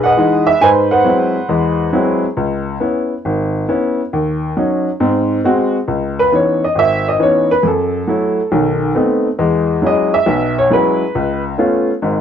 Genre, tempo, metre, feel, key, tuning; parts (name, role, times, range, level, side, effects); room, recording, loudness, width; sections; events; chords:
solo jazz; 137 BPM; 4/4; swing 68% on 8ths; C# minor; A4 = 437 Hz
clear upright piano; solo; 0.0-12.2 s; G#1 to G#5; -13 LUFS; equal
moderate studio ambience, RT60 0.5 s; worn, warbling old tape, cassette tape, warbly pitch drift; -13 LUFS; side -8 dB against mid
0.0-5.9 A section; 5.9-12.2 B section
upright piano solo 5.9-12.2
0.0 Emaj7; 0.6 G#7alt; 2.4 C#m7; 4.1 D#m7; 5.0 G#7; 5.9 C#m9; 7.6 F#m7; 8.5 B7b9; 9.4 E69; 11.1 C#7b13